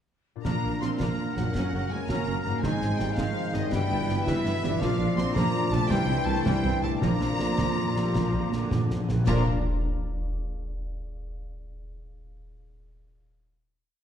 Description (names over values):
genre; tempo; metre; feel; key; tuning
cinematic, heroic adventure film score; 109 BPM (dotted quarters); 12/8; straight; Bb lydian; A4 = 440 Hz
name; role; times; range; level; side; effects
rich symphonic violin section; melody; 0.4-9.5 s; Eb5 to C6; -36 LUFS; left 4 dB; none
clear symphonic violin section; second line; 0.4-9.5 s; Bb4 to C6; -38 LUFS; left 3 dB; none
warm clarinet; second line; 0.4-9.4 s; Db4 to F4; -37 LUFS; left 3 dB; none
warm oboe; second line; 0.4-9.4 s; Bb4 to D5; -38 LUFS; right 1 dB; none
clear trombone section; sustained chords; 0.4-9.4 s; F2 to Bb3; -35 LUFS; right 4 dB; none
mellow French horn section; sustained chords; 0.4-9.4 s; Bb3 to Gb4; -38 LUFS; left 2 dB; none
concert harp; arpeggios; 0.4-9.5 s; Gb2 to F5; -35 LUFS; left 9 dB; none
mellow tuba; bass; 0.4-9.4 s; Gb1 to C2; -34 LUFS; right 3 dB; none
rich symphonic double bass section; bass; 0.4-9.5 s; Gb1 to C2; -32 LUFS; right 3 dB; none
concert snare drum, clash cymbals and concert bass drum; drums; 0.4-9.5 s; none; -32 LUFS; equal; none
mellow hollow flute section; second line; 0.5-9.5 s; Eb5 to C6; -38 LUFS; left 2 dB; none
rich symphonic viola section; accompaniment; 0.5-9.5 s; D3 to Bb4; -36 LUFS; right 1 dB; none
warm symphonic cello section; bass; 0.5-9.5 s; Eb3 to C4; -33 LUFS; right 4 dB; none
timpani; percussion; 7.0-9.4 s; Bb2; -32 LUFS; left 1 dB; none
room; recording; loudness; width
moderate scoring stage reverb, RT60 1.5 s; dark, warm production; -24 LUFS; side -9 dB against mid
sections
0.4-9.3 theme; 9.3-11.5 final chord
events
timpani fill 7.0-9.3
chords
0.4 Bb; 1.5 Gb; 2.6 Ab; 3.7 Em/G; 4.8 Bb; 5.9 C; 7.0 Bb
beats
| 0.45 1.00 1.55 2.09 | 2.64 3.18 3.73 4.27 | 4.81 5.36 5.90 6.46 | 7.02 7.58 8.15 8.71 | 9.27